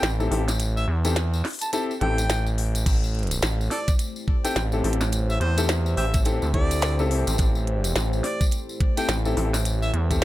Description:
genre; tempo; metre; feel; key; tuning
glitch hop; 106 BPM; 4/4; swing 60% on 16ths; A minor; A4 = 440 Hz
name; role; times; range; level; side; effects
warm harmonica; melody; 0.0-9.9 s; G4 to A5; -32 LUFS; equal; ping-pong delay
gritty driven synth bass; bass; 0.0-10.2 s; A1 to E2; -24 LUFS; equal; tube saturation
glitchy drum kit; drums; 0.0-10.2 s; crash cymbal, hi-hat, snare drum; -28 LUFS; equal; overdrive
tambourine; percussion; 0.0-10.2 s; none; -34 LUFS; left 2 dB; none
warm baby grand piano; stabs; 0.2-10.2 s; C4 to A4; -30 LUFS; left 3 dB; sidechain pumping, ping-pong delay
dark analog pad; sustained chords; 3.4-10.2 s; A3 to C5; -34 LUFS; equal; chorus, phaser, sidechain pumping
electronic kick drum; drums; 2.9-10.2 s; none; -22 LUFS; equal; none
room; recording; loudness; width
digital ambience; none; -21 LUFS; side -16 dB against mid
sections
0.0-10.2 A section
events
kick drops out 0.6-2.9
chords
0.0 Am7

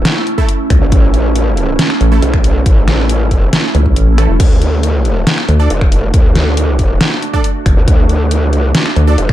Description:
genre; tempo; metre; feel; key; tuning
heavy wobble dubstep; 138 BPM; 4/4; half-time; unclear; A4 = 442 Hz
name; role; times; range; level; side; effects
evolving wavetable pad; sustained chords; 0.0-9.3 s; A3 to F#4; -19 LUFS; right 2 dB; chorus, built-in reverb, sidechain pumping
growl bass; bass; 0.0-9.3 s; E1 to D2; -13 LUFS; equal; chorus, overdrive
dubstep drum kit; drums; 0.1-9.3 s; crash cymbal, finger snaps, hi-hat, snare drum; -16 LUFS; equal; none
supersaw stab; stabs; 0.4-9.2 s; A3 to D5; -22 LUFS; right 4 dB; dub echo
electronic kick drum; drums; 0.4-9.3 s; none; -11 LUFS; equal; none
vowel-sweep wobble bass; bass; 0.7-9.2 s; E1 to D2; -10 LUFS; equal; chorus, overdrive
room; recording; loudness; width
little or no reverb; dark, warm production; -9 LUFS; side -13 dB against mid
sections
0.0-9.3 A section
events
kick drops out 4.0-4.4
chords
0.0 A; 4.4 D

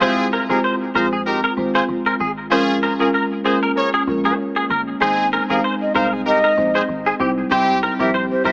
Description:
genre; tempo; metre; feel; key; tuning
afrobeats; 96 BPM; 4/4; swing 55% on 16ths; Ab major; A4 = 436 Hz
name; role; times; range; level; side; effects
clear horn section; second line; 0.0-8.5 s; C4 to Db5; -22 LUFS; equal; tape echo
marimba with medium mallets; accompaniment; 0.0-8.5 s; G3 to C5; -21 LUFS; equal; tape echo
ethereal airy pad; sustained chords; 0.0-8.5 s; C3 to G4; -30 LUFS; equal; none
direct-recorded clean electric guitar; riff; 0.0-8.5 s; G4 to C5; -20 LUFS; equal; ensemble chorus, tape echo
deep log drum bass; bass; 0.0-8.5 s; F1 to C2; -31 LUFS; equal; none
breathy hollow jazz flute; melody; 5.0-8.5 s; C5 to Ab5; -19 LUFS; equal; tape echo
room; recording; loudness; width
light reverb, studio reverb; echo-heavy mix, AM radio sound; -16 LUFS; side -37 dB against mid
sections
0.0-8.5 A section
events
none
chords
0.0 Fm; 2.5 Bbm7; 5.0 Ab; 7.2 C

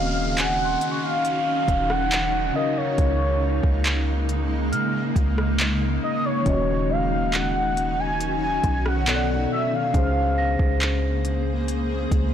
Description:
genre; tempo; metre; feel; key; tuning
contemporary R&B; 69 BPM; 4/4; straight; Eb dorian; A4 = 442 Hz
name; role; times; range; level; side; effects
warm velvety synth lead; melody; 0.0-11.0 s; Db5 to Ab5; -25 LUFS; right 1 dB; chorus, tape echo
mellow tine electric piano; accompaniment; 0.0-12.3 s; B2 to F5; -29 LUFS; left 5 dB; medium stereo tremolo
granular cloud pad; sustained chords; 0.0-12.3 s; Db3 to C5; -28 LUFS; equal; built-in reverb
soft 808-style bass; bass; 0.0-12.3 s; Eb1 to Db3; -25 LUFS; right 1 dB; none
downlifter; sound effects; 0.0-6.5 s; none; -36 LUFS; equal; none
smooth R&B drum kit; drums; 0.4-12.3 s; handclaps, hi-hat, kick drum, rim click; -25 LUFS; equal; overdrive
large celesta; texture; 0.4-12.3 s; Ab5 to Bb6; -34 LUFS; right 1 dB; tape echo
room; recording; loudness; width
digital ambience; blown-out, overdriven recording, overdrive; -20 LUFS; side -9 dB against mid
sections
0.0-12.3 A section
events
none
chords
0.0 Ebm9; 2.5 Db6; 6.5 Ebm9; 9.1 Bm7; 9.9 Bbm7/Db

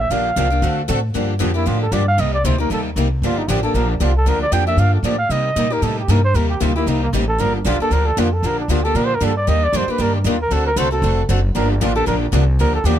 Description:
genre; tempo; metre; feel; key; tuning
acoustic string swing (jazz manouche); 231 BPM; 4/4; swing 56% on 8ths; G minor; A4 = 441 Hz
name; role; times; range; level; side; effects
mellow flugelhorn; melody; 0.0-13.0 s; Bb3 to G5; -21 LUFS; right 2 dB; none
upright bass; bass; 0.0-13.0 s; E#1 to C3; -18 LUFS; equal; none
picked acoustic archtop guitar; accompaniment; 0.1-13.0 s; C3 to A4; -23 LUFS; left 6 dB; none
picked steel-string acoustic guitar; accompaniment; 0.1-13.0 s; C3 to A4; -25 LUFS; right 9 dB; none
room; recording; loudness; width
little or no reverb; close, detailed microphones; -15 LUFS; side -10 dB against mid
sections
0.0-1.1 A section; 1.1-13.0 A section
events
flugelhorn solo 0.0-1.1, 1.1-13.0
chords
0.0 Gm9; 0.6 D7#9; 1.1 Gm9; 2.2 Cm9; 3.2 Gm9; 5.3 Cm9; 7.4 Gm7; 9.5 Ebmaj7; 10.5 D7#9; 11.6 Gm9

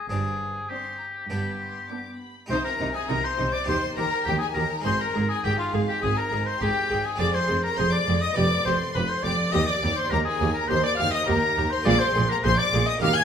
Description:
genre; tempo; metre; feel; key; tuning
classical, baroque-style concerto movement with solo episodes; 102 BPM; 4/4; straight; C minor; A4 = 440 Hz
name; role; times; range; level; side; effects
clear oboe; melody; 0.0-13.2 s; F4 to Ab5; -27 LUFS; left 3 dB; none
harpsichord; accompaniment; 0.0-13.2 s; Eb2 to Ab4; -34 LUFS; right 1 dB; none
clear chamber double bass section; bass; 0.1-13.1 s; F1 to Eb2; -29 LUFS; right 2 dB; none
warm chamber cello section; bass; 0.1-13.1 s; Eb2 to Eb3; -30 LUFS; right 2 dB; none
rich chamber violin section; melody; 0.7-13.2 s; F5 to Ab6; -31 LUFS; left 5 dB; none
rich chamber violin section; second line; 0.7-13.2 s; D4 to Ab5; -30 LUFS; equal; none
rich chamber viola section; accompaniment; 0.7-13.1 s; B3 to Ab4; -32 LUFS; equal; none
room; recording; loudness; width
wet recital hall reverb, RT60 1.7 s; minimal, uncompressed stereo recording; -22 LUFS; side -8 dB against mid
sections
0.0-2.5 A section; 2.5-13.2 B section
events
none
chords
0.1 Gsus4; 1.3 G; 2.5 Cm; 3.7 Eb; 4.9 Ab5; 7.2 Ddim/F; 8.4 G7/F; 9.5 Cm/Eb; 11.9 Bb5

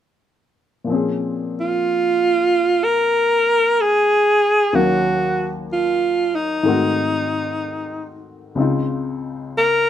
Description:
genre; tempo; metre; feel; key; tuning
jazz ballad; 62 BPM; 4/4; swing 67% on 8ths; Bb minor; A4 = 440 Hz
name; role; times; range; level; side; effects
warm upright piano; accompaniment; 0.8-9.9 s; Db2 to F5; -22 LUFS; left 4 dB; none
clear alto saxophone; melody; 1.6-9.9 s; Eb4 to Bb4; -16 LUFS; right 1 dB; none
room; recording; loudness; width
light reverb; minimal, uncompressed stereo recording; -16 LUFS; side -10 dB against mid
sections
0.9-9.9 A section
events
none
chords
0.9 Bbm9; 4.7 Ebm7; 6.6 Ab7b9; 8.6 Dbmaj9

